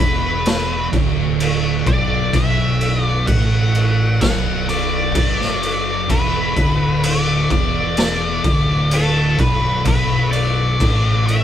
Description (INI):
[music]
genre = stoner and doom metal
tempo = 64 BPM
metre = 4/4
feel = straight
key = B minor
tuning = A4 = 440 Hz
[part]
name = octave-fuzz lead guitar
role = melody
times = 0.0-11.4 s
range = A4 to F#5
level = -22 LUFS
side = left 1 dB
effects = wah, distortion
[part]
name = thick fuzz guitar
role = riff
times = 0.0-11.4 s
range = B1 to A2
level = -23 LUFS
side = left 7 dB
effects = distortion
[part]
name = thick fuzz guitar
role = riff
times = 0.0-11.4 s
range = B1 to A2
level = -20 LUFS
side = right 5 dB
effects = distortion
[part]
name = growling fingered electric bass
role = bass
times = 0.0-11.4 s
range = B0 to A1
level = -27 LUFS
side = equal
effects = overdrive
[part]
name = raw garage drum kit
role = drums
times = 0.5-11.4 s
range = crash cymbal, kick drum, snare drum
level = -19 LUFS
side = equal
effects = none
[sound]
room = moderate studio reverb, RT60 0.8 s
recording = band playing live in one room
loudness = -15 LUFS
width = side -10 dB against mid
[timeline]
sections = 0.0-11.4 A section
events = none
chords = 0.0 Bm